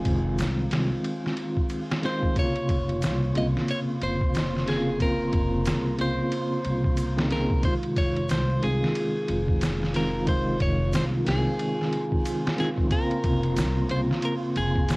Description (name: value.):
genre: trip hop.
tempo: 91 BPM.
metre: 4/4.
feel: swing 60% on 16ths.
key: F minor.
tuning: A4 = 440 Hz.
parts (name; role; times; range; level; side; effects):
bell-like tine electric piano; accompaniment; 0.0-15.0 s; C3 to Ab4; -27 LUFS; equal; tremolo, low-pass filter, cassette tape.
upright bass; bass; 0.0-15.0 s; F1 to C2; -28 LUFS; equal; tube saturation.
wind-like tuned noise texture; texture; 0.0-15.0 s; F4; -40 LUFS; right 3 dB; built-in reverb, cassette tape.
trip hop sampler-style drum kit; drums; 0.1-15.0 s; kick drum, ride cymbal, snare drum; -28 LUFS; equal; cassette tape.
tube shaker; percussion; 0.4-15.0 s; none; -48 LUFS; right 2 dB; none.
clean electric guitar; melody; 2.1-15.0 s; Ab4 to Eb5; -31 LUFS; equal; vintage 12-bit sampler grit, cassette tape, dub echo.
room: light reverb.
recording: home recording on cassette, vinyl crackle, lossy compression artefacts.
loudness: -23 LUFS.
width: side -25 dB against mid.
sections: 0.0-15.0 A section.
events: none.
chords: 0.0 Fm7; 2.4 Bbmadd9/F; 7.6 Fm7; 12.9 Bbmadd9/F.